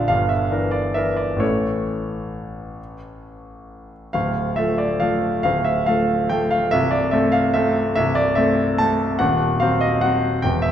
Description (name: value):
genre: classical, piano waltz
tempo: 128-153 BPM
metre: 3/4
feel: rubato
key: unclear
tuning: A4 = 440 Hz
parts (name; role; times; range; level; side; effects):
- bright concert grand piano; solo; 0.0-10.7 s; Bb0 to A5; -18 LUFS; equal; none
room: wet recital hall reverb, RT60 1.8 s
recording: none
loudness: -17 LUFS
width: side -10 dB against mid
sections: 0.0-10.7 A section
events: none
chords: 0.1 Em7b5/G; 1.4 A; 4.1 Dm; 6.7 Am/C; 9.2 Cdim/Eb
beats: | 0.10 0.52 0.96 | 1.41 1.87 2.33 | 2.78 3.23 3.69 | 4.14 4.57 5.01 | 5.45 5.88 6.31 | 6.73 7.13 7.56 | 7.97 8.37 8.80 | 9.20 9.61 10.03 | 10.44